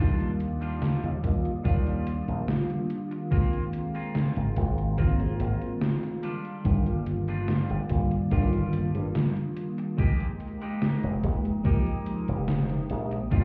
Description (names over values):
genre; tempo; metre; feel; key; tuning
vaporwave; 72 BPM; 4/4; straight; Eb major; A4 = 443 Hz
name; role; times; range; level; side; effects
FM electric piano with soft pad layer; accompaniment; 0.0-13.4 s; Eb3 to G4; -32 LUFS; equal; phaser, analog chorus, analog delay
warbly tape-like pad; sustained chords; 0.1-13.4 s; Ab3 to Eb6; -43 LUFS; equal; chorus, built-in reverb
clean electric guitar; riff; 0.0-13.4 s; G3 to G4; -42 LUFS; equal; subtle chorus, analog delay
slap bass with an envelope filter; bass; 0.0-13.4 s; F1 to Ab2; -31 LUFS; equal; none
gated 80s digital drum machine; drums; 0.2-13.4 s; hi-hat, snare drum; -32 LUFS; equal; gated reverb, gated reverb snare, overdrive
electronic kick drum; drums; 1.2-13.4 s; none; -27 LUFS; equal; overdrive
room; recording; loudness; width
light reverb; heard muffled through a wall, club reverb, cassette tape, EQ; -28 LUFS; mono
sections
0.0-13.4 A section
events
none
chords
0.0 Ebmaj9; 3.3 Ab69; 6.2 Ebmaj9/G; 10.0 Fm11